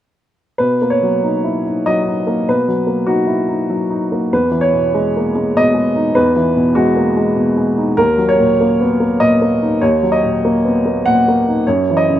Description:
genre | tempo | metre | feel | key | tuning
neoclassical minimalist piano | 98 BPM | 3/4 | rubato | B major | A4 = 441 Hz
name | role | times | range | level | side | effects
warm upright piano | solo | 0.6-12.2 s | D#2 to F#5 | -12 LUFS | equal | none
room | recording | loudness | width
light reverb, studio ambience | rough home demo mix | -13 LUFS | side -11 dB against mid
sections
0.6-12.2 A section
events
none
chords
0.6 Bmaj7; 4.3 Emaj7; 8.0 D#m7; 11.7 F#7(no3)

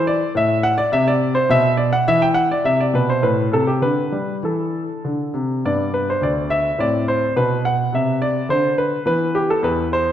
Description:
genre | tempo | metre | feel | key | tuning
classical, baroque-style suite movement for grand piano | 105 BPM | 3/4 | rubato | G major | A4 = 440 Hz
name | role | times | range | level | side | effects
clear grand piano | solo | 0.0-10.1 s | D2 to G5 | -16 LUFS | equal | none
room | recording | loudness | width
wet concert hall reverb, RT60 1.8 s | dark, warm production, nothing above 10.4 kHz | -16 LUFS | side -10 dB against mid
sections
0.0-5.6 A section; 5.6-10.1 B section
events
none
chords
0.3 Amadd11; 1.5 N.C.; 2.1 E5; 3.2 Am; 3.8 Dsus4; 5.0 Csus2; 5.6 G; 6.8 D5/A; 7.4 Bmadd11; 9.1 E5

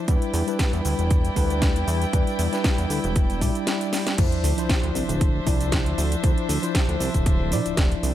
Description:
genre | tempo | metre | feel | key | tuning
nu-disco, nu disco | 117 BPM | 4/4 | swing 54% on 16ths | D dorian | A4 = 440 Hz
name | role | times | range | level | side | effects
mellow tine electric piano | accompaniment | 0.0-8.1 s | F3 to D5 | -27 LUFS | left 1 dB | medium stereo tremolo, tape echo
rich chamber violin section | sustained chords | 0.0-8.1 s | D4 to G5 | -31 LUFS | equal | sidechain pumping
fat analog bass | bass | 0.1-8.1 s | D1 to B2 | -25 LUFS | equal | sidechain pumping
electronic kick drum | drums | 0.1-7.9 s | none | -22 LUFS | equal | none
house drum kit | drums | 0.1-8.1 s | cabasa, crash cymbal, hi-hat, snare drum | -29 LUFS | equal | none
sub drop | sound effects | 4.2-6.2 s | none | -31 LUFS | equal | none
room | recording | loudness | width
little or no reverb | none | -20 LUFS | side -12 dB against mid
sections
0.0-4.2 A section; 4.2-8.1 B section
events
drum fill 3.9; drop 4.2-8.1; impact 4.2-6.2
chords
0.1 Em7; 4.2 Dm9

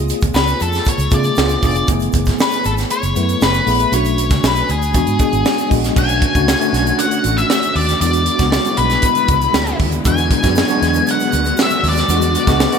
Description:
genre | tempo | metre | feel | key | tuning
polished 1980s jazz-funk pop | 118 BPM | 4/4 | straight | unclear | A4 = 440 Hz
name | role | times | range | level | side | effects
tine electric piano | accompaniment | 0.0-12.8 s | F#3 to B4 | -19 LUFS | left 1 dB | medium stereo tremolo, lush chorus
vintage muted fingered electric bass | bass | 0.0-12.6 s | E#1 to C#3 | -19 LUFS | equal | none
crisp fusion drum kit | drums | 0.1-12.8 s | crash cymbal, hi-hat, kick drum, snare drum | -18 LUFS | right 1 dB | gated reverb
tube shaker | percussion | 0.1-12.8 s | none | -34 LUFS | right 10 dB | none
octave-fuzz lead guitar | melody | 0.4-12.8 s | G#4 to G#5 | -18 LUFS | left 3 dB | distortion, digital delay
warm studio string section | sustained chords | 6.0-12.8 s | D3 to F#4 | -27 LUFS | equal | none
room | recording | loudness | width
light reverb, small room reverb | bright 1980s-style digital production | -13 LUFS | side -6 dB against mid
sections
0.0-6.0 A section; 6.0-12.8 B section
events
none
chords
0.0 C#7b13; 1.4 C#7b9; 1.9 F#m11; 3.9 Bm9; 4.9 E7 (rootless); 6.0 Bm7; 8.0 E7

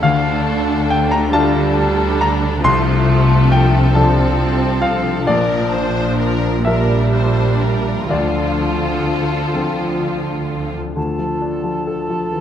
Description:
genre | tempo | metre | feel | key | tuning
cinematic | 40-47 BPM (dotted quarters) | 6/8 | rubato | D minor | A4 = 440 Hz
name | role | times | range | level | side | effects
muted symphonic violin section | melody | 0.0-10.8 s | A4 to C5 | -26 LUFS | left 3 dB | none
muted symphonic violin section | second line | 0.0-10.7 s | A3 to F4 | -24 LUFS | left 1 dB | none
clear grand piano | accompaniment | 0.0-12.4 s | Bb1 to C6 | -20 LUFS | left 2 dB | none
muted symphonic viola section | accompaniment | 0.0-10.8 s | F3 to A3 | -23 LUFS | right 2 dB | none
concert harp | arpeggios | 0.0-12.4 s | Bb2 to D5 | -23 LUFS | left 9 dB | none
muted symphonic cello section | bass | 0.0-10.7 s | Bb2 to D3 | -23 LUFS | right 2 dB | none
muted symphonic double bass section | bass | 0.0-10.7 s | Bb1 to D2 | -21 LUFS | right 3 dB | none
mellow cor anglais | second line | 11.0-12.4 s | A4 | -27 LUFS | right 2 dB | none
silver concert flute | second line | 11.0-12.4 s | A5 | -27 LUFS | equal | none
warm clarinet | second line | 11.0-12.4 s | F4 | -26 LUFS | equal | none
room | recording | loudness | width
moderate scoring stage reverb, RT60 1.9 s | close, detailed microphones | -14 LUFS | side -9 dB against mid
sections
0.0-11.0 A section; 11.0-12.4 B section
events
none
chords
0.0 Dm; 2.6 F6/C; 5.3 Bb; 8.1 Dm7; 11.0 Dm

